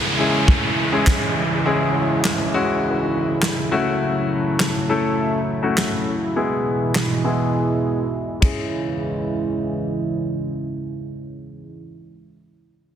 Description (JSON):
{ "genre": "dance-pop", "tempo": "102 BPM", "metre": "4/4", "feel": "straight", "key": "C# minor", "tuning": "A4 = 440 Hz", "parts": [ { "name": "chorused pulse-width pad", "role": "sustained chords", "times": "0.0-11.8 s", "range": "B2 to E4", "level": "-23 LUFS", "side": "right 1 dB", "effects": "sidechain pumping, low-pass filter" }, { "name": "downlifter", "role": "sound effects", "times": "0.0-4.0 s", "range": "none", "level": "-24 LUFS", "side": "equal", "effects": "none" }, { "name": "clear baby grand piano", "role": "accompaniment", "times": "0.2-12.0 s", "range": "G#3 to A4", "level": "-23 LUFS", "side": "left 2 dB", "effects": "sidechain pumping, low-pass filter" }, { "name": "loose indie drum kit", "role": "drums", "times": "0.5-8.6 s", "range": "handclaps, kick drum, ride cymbal, snare drum", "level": "-21 LUFS", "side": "equal", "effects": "none" } ], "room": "moderate lush hall reverb, RT60 2.9 s", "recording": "dense, heavily limited modern master", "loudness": "-18 LUFS", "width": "side -9 dB against mid", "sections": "0.0-8.7 A section; 8.7-11.1 B section", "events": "filter sweep 0.0-8.7; silent gap 7.5-8.7", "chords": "0.0 C#m; 3.7 F#m7; 6.4 E; 8.4 C#m" }